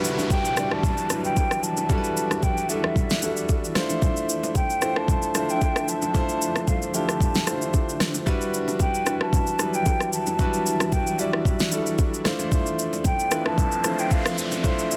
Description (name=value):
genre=amapiano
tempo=113 BPM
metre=4/4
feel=swing 55% on 16ths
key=E phrygian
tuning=A4 = 440 Hz
part: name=clear concert grand piano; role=accompaniment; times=0.0-15.0 s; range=F#3 to D5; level=-29 LUFS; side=equal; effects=none
part: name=granular cloud pad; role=sustained chords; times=0.1-15.0 s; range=E3 to E5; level=-36 LUFS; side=equal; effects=built-in reverb, sidechain pumping
part: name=smooth R&B drum kit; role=drums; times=0.0-15.0 s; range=kick drum, rim click, shaker, snare drum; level=-27 LUFS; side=equal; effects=soft clipping on snare
part: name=downlifter and noise sweep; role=sound effects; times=0.0-4.0, 13.2-15.0 s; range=none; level=-37 LUFS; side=equal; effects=none
part: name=bongos and congas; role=percussion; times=0.2-14.8 s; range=none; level=-36 LUFS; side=equal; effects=none
part: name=mellow hollow jazz flute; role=melody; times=0.3-15.0 s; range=E5 to A5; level=-30 LUFS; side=equal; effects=tape echo
room=light reverb, small room ambience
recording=dense, heavily limited modern master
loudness=-24 LUFS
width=mono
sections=0.0-15.0 A section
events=noise sweep 13.2-15.0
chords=0.0 Em9; 3.8 Dm9; 8.3 Em9; 12.3 Dm9